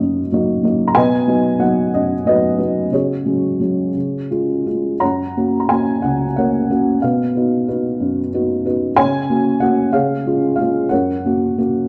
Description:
classical, lyrical solo piano; 61 BPM (dotted quarters); 6/8; rubato; F# major; A4 = 441 Hz
felt-muted upright piano; solo; 0.0-11.9 s; C#2 to A#5; -17 LUFS; equal
moderate recital hall reverb, RT60 1.7 s; dark, warm production; -17 LUFS; mono
0.0-11.9 A section
0.0 D#m/F#; 1.0 B; 2.9 C#sus4; 3.9 C#; 5.0 F#; 7.0 B; 9.0 F#/C#; 9.9 C#; 10.9 F#

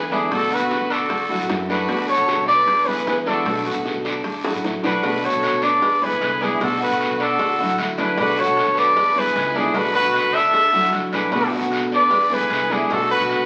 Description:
latin, Cuban son and guajira; 152 BPM; 4/4; straight; A4 = 440 Hz
warm trumpet; melody; 0.0-13.5 s; G#4 to E5; -21 LUFS; equal
rich studio violin section; second line; 0.0-13.5 s; E4 to B4; -32 LUFS; equal
nylon-string guitar; accompaniment; 0.0-13.5 s; B2 to F#4; -29 LUFS; equal
Cuban tres; arpeggios; 0.0-13.5 s; D4 to B4; -29 LUFS; equal
upright bass; bass; 0.0-13.5 s; A1 to E3; -38 LUFS; equal
bongos and cowbell; percussion; 0.1-13.5 s; -33 LUFS; equal
guiro; percussion; 0.1-13.5 s; -33 LUFS; equal
wet studio reverb, RT60 0.9 s; very old 78 rpm record, vinyl crackle; -20 LUFS; mono
0.0-5.0 A section; 5.0-13.5 A section
drum fill 4.4-5.0
0.3 Bm7; 1.1 Dadd9; 1.9 Bm7; 2.7 E7; 3.5 Bm7; 4.2 Dadd9; 5.0 Bm7; 5.8 E7; 6.6 Bm7; 7.4 Dadd9; 8.2 Bm7; 9.0 E7; 9.8 Bm7; 10.5 Dadd9; 11.3 Bm7; 12.1 E7; 12.9 Bm7

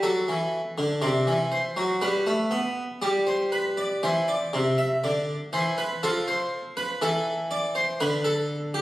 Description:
classical, baroque-style two-part invention for harpsichord; 60 BPM; 4/4; straight; C major; A4 = 441 Hz
harpsichord; solo; 0.0-8.8 s; C3 to E5; -23 LUFS; equal
wet recital hall reverb, RT60 1.4 s; recorded on a phone in the room, studio reverb, compression; -23 LUFS; side -16 dB against mid
0.0-4.0 A section; 4.0-8.8 B section
0.0 D7; 2.0 G; 4.0 C; 6.0 F; 8.0 G/D

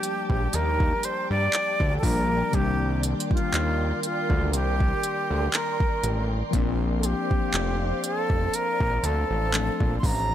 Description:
contemporary R&B; 60 BPM; 4/4; swing 54% on 16ths; Bb major; A4 = 440 Hz
bright reedy concert flute; melody; 0.0-10.3 s; F4 to C6; -28 LUFS; right 1 dB; digital delay
bell-like tine electric piano; accompaniment; 0.0-10.3 s; Eb3 to D4; -32 LUFS; left 7 dB; auto-pan
ethereal airy pad; sustained chords; 0.0-10.3 s; G4 to C6; -33 LUFS; right 2 dB; ensemble chorus, built-in reverb
smooth R&B drum kit; drums; 0.0-10.3 s; handclaps, hi-hat, kick drum; -26 LUFS; equal; overdrive
fat analog bass; bass; 0.3-10.3 s; F1 to G2; -26 LUFS; equal
little or no reverb; -22 LUFS; side -11 dB against mid
0.0-10.3 A section
0.0 Ebmaj7; 2.5 Cm9; 6.5 Bbmaj9

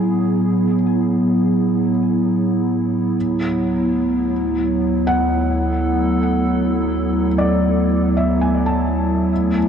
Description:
ambient; free time; A4 = 440 Hz
warbly tape-like pad; sustained chords; 0.0-9.7 s; D2 to A4; -16 LUFS; equal; chorus, built-in reverb
felt-muted upright piano; arpeggios; 0.0-9.7 s; D5 to A5; -26 LUFS; left 1 dB; ping-pong delay
analog drone; drone; 9.4-9.7 s; A3 to E4; -21 LUFS; left 2 dB; lush chorus
wet huge ambient reverb, RT60 7.9 s; dark, warm production; -16 LUFS; side -8 dB against mid
0.0-9.7 A section
0.0 Asus2; 3.2 Dadd9

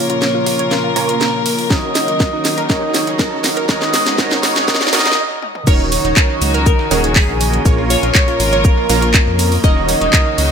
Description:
progressive house; 121 BPM; 4/4; straight; Eb minor; A4 = 441 Hz
expressive synth lead; melody; 0.0-10.5 s; Ab4 to Eb5; -20 LUFS; equal; wide subtle chorus, digital delay
rich chamber string section; sustained chords; 0.0-10.5 s; Db3 to Bb4; -23 LUFS; left 3 dB; sidechain pumping
analog pluck; arpeggios; 0.0-10.5 s; Eb4 to Db5; -23 LUFS; right 2 dB; chorus, sidechain pumping, ping-pong delay
supersaw stab; stabs; 0.0-10.5 s; Bb2 to Db5; -21 LUFS; right 3 dB; sidechain pumping, ping-pong delay
riser; sound effects; 1.5-5.2 s; -28 LUFS; right 1 dB
house drum kit; drums; 0.1-10.5 s; crash cymbal, handclaps, hi-hat, snare drum, toms; -18 LUFS; equal
electronic kick drum; drums; 1.7-10.2 s; -14 LUFS; equal
glassy wavetable pluck; second line; 5.7-10.5 s; Ab4 to Eb5; -24 LUFS; equal; chorus, sidechain pumping, ping-pong delay
dark detuned saw bass; bass; 5.7-10.5 s; Eb1 to F2; -18 LUFS; equal; sidechain pumping
breakbeat sampler-style drum kit; drums; 5.7-10.5 s; hi-hat, shaker, snare drum; -28 LUFS; left 5 dB
drifting glass-harmonics texture; texture; 6.4-10.5 s; Eb5; -29 LUFS; right 6 dB; chorus, built-in reverb, sidechain pumping
light reverb, digital ambience; high-pass filter; -12 LUFS; side -7 dB against mid
0.0-5.7 A section; 5.7-10.5 B section
build-up 0.0-5.7; drum fill 0.0-5.2, 5.4; filter sweep on synth pluck 0.0-5.7; filter sweep on supersaw synth 0.0-5.7; stop 5.2-5.7; drop 5.7-10.5
0.0 Bbm; 1.7 Ebm7; 3.7 Abm; 5.7 Ebm7; 7.7 Bbm; 9.6 Ebm7

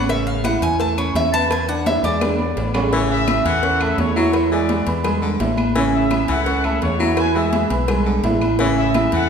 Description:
latin, salsa; 170 BPM; 4/4; straight; A major; A4 = 442 Hz
Cuban tres; melody; 0.0-2.8 s; C#5 to A5; -22 LUFS; equal
warm concert grand piano; accompaniment; 0.0-9.2 s; C#3 to D6; -21 LUFS; right 3 dB
fingered electric bass; bass; 0.0-9.3 s; A1 to E2; -23 LUFS; left 1 dB
congas; percussion; 0.1-9.3 s; -26 LUFS; equal
cowbell; percussion; 0.1-9.3 s; -30 LUFS; left 3 dB
claves; percussion; 0.4-9.1 s; -37 LUFS; left 5 dB
timbales and agogo bells; percussion; 0.4-9.1 s; -28 LUFS; right 2 dB
mellow trumpet section; melody; 2.9-9.3 s; E4 to G#5; -23 LUFS; left 1 dB
bright baritone saxophone; second line; 2.9-9.3 s; D3 to F#3; -25 LUFS; left 5 dB
wet scoring stage reverb, RT60 1.6 s; recorded in a church or concert hall; -16 LUFS; side -6 dB against mid
0.0-2.9 A section; 2.9-9.3 B section
Cuban tres solo 0.0-2.9; drum fill 1.9-2.9
0.1 A; 1.5 E7; 2.9 A; 4.3 E7; 5.8 A; 7.2 E7; 8.6 A

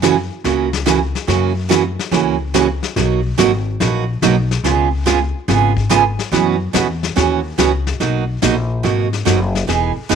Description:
country, western swing; 143 BPM; 4/4; swing 68% on 8ths; B major; A4 = 440 Hz
picked steel-string acoustic guitar; accompaniment; 0.0-10.2 s; B2 to G#4; -16 LUFS; right 10 dB
upright bass; bass; 0.0-10.2 s; E1 to F#2; -19 LUFS; left 2 dB
vintage brush drum kit; drums; 0.0-10.2 s; brushed snare drum, hi-hat, kick drum, snare drum; -21 LUFS; left 10 dB
light reverb, small room ambience; 1960s-style stereo with parts hard left and right; -14 LUFS; side -7 dB against mid
0.0-8.0 A section; 8.0-10.2 B section
0.0 F#7; 3.0 Bmaj7; 4.6 C#7; 6.3 F#7sus4; 8.0 Bmaj7

